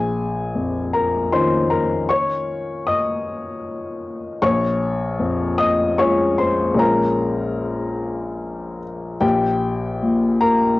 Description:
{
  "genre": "neoclassical minimalist piano",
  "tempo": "76 BPM",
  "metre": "3/4",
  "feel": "rubato",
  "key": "unclear",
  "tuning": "A4 = 438 Hz",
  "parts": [
    { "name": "warm upright piano", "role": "solo", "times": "0.0-10.8 s", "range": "Bb1 to Eb6", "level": "-18 LUFS", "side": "left 2 dB", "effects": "cassette tape" }
  ],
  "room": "moderate booth ambience, RT60 0.2 s",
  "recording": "home recording on cassette",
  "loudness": "-18 LUFS",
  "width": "side -18 dB against mid",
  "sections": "0.0-10.8 A section",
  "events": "none",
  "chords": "0.0 Dbadd9/Bb; 9.2 C7(no3)/Bb (rootless)"
}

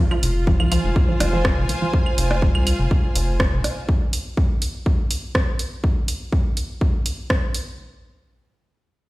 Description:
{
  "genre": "minimal techno",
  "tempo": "123 BPM",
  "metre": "4/4",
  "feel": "straight",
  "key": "F minor",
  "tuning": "A4 = 440 Hz",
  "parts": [
    { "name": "rich symphonic string section", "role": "texture", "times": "0.0-3.9 s", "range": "F4 to Ab5", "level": "-27 LUFS", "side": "equal", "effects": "sidechain pumping" },
    { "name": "resonant blip pluck", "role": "riff", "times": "0.1-1.8 s", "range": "F3", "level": "-27 LUFS", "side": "equal", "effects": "chorus, cassette tape, sidechain pumping, ping-pong delay" },
    { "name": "claves and percussion blips", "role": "percussion", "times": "0.1-3.7 s", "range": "none", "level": "-28 LUFS", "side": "right 2 dB", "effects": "overdrive, tape echo" },
    { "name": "rubbery square bass", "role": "bass", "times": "0.2-3.6 s", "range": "F1 to C2", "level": "-21 LUFS", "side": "equal", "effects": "sidechain pumping" },
    { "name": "house drum kit", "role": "drums", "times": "0.2-7.6 s", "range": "hi-hat, rim click", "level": "-25 LUFS", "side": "right 1 dB", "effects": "overdrive" },
    { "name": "electronic kick drum", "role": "drums", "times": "0.5-7.4 s", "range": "none", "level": "-20 LUFS", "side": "equal", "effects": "overdrive" }
  ],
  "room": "light reverb",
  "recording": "played on a big sound system in a bare room, stone room reverb",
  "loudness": "-18 LUFS",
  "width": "side -19 dB against mid",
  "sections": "0.0-7.8 A section; 7.8-9.1 B section",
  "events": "filter sweep on synth arpeggio sound 0.0-1.9",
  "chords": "0.0 Fm; 7.8 N.C."
}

